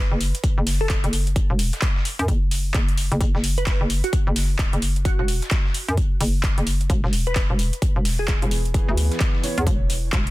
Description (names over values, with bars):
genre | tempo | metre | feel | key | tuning
bass house | 130 BPM | 4/4 | swing 61% on 16ths | unclear | A4 = 441 Hz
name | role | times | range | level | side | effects
glassy wavetable pluck | melody | 0.0-8.8 s | F#4 to B4 | -31 LUFS | right 1 dB | chorus, tape echo
hollow knocking FM bass | bass | 0.0-10.3 s | E1 to F#2 | -22 LUFS | equal | overdrive, sidechain pumping
big-room dance drum kit | drums | 0.2-10.3 s | handclaps, hi-hat | -28 LUFS | right 1 dB | overdrive
dusty soul sampler-style drum kit | drums | 0.2-10.3 s | hi-hat, snare drum, tambourine | -35 LUFS | left 3 dB | overdrive, high-pass filter on perc, high-pass filter on snare, high-pass filter on hats, high-pass filter on room
electronic kick drum | drums | 0.4-10.2 s | none | -21 LUFS | equal | overdrive
warm concert grand piano | stabs | 8.4-9.7 s | E3 to C#5 | -29 LUFS | right 2 dB | sidechain pumping, tape echo
room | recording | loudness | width
little or no reverb | dense, heavily limited modern master | -19 LUFS | side -18 dB against mid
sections
0.0-10.3 A section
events
none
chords
0.0 N.C.; 6.9 E